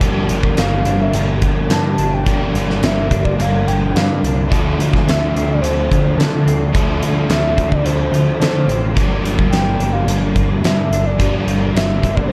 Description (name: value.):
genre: rock, shoegaze and dream pop.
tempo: 108 BPM.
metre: 4/4.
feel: straight.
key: unclear.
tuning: A4 = 440 Hz.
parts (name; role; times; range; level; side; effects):
twelve-string electric guitar; arpeggios; 0.0-12.3 s; F3 to D4; -30 LUFS; equal; none.
crunchy overdriven guitar; riff; 0.0-12.3 s; D3 to Bb4; -24 LUFS; equal; ensemble chorus.
crunchy overdriven guitar; riff; 0.0-12.3 s; G2 to G4; -24 LUFS; equal; reverse reverb.
growling picked electric bass; bass; 0.0-12.3 s; G1 to D3; -22 LUFS; equal; overdrive.
huge arena drum kit; drums; 0.0-12.3 s; hi-hat, kick drum, snare drum; -22 LUFS; equal; none.
pure breathy sine lead; melody; 0.6-12.3 s; A4 to A5; -25 LUFS; equal; chorus, slapback echo.
room: small room ambience.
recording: dark, warm production.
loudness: -16 LUFS.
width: mono.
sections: 0.0-12.3 A section.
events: none.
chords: 0.0 Gm7; 4.5 Dm7; 9.0 Gm7.